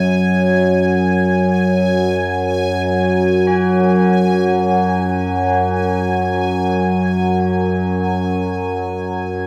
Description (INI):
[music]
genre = dark ambient drone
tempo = free time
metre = none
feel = none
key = unclear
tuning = A4 = 438 Hz
[part]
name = overtone-sweeping drone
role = drone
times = 0.0-9.5 s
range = F#2 to F#3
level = -17 LUFS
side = equal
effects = chorus, built-in reverb
[part]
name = bubbling stepped-filter texture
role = texture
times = 0.0-9.5 s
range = G#5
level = -26 LUFS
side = equal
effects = chorus, built-in reverb
[part]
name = tubular bells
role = arpeggios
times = 3.5-9.5 s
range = C#4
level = -33 LUFS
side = equal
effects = diffuse ambient delay
[sound]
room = wet huge ambient reverb, RT60 7.9 s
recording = none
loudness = -17 LUFS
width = mono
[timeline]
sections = 0.0-9.5 A section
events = fade-out 6.5-9.5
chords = 0.0 C#sus4/F#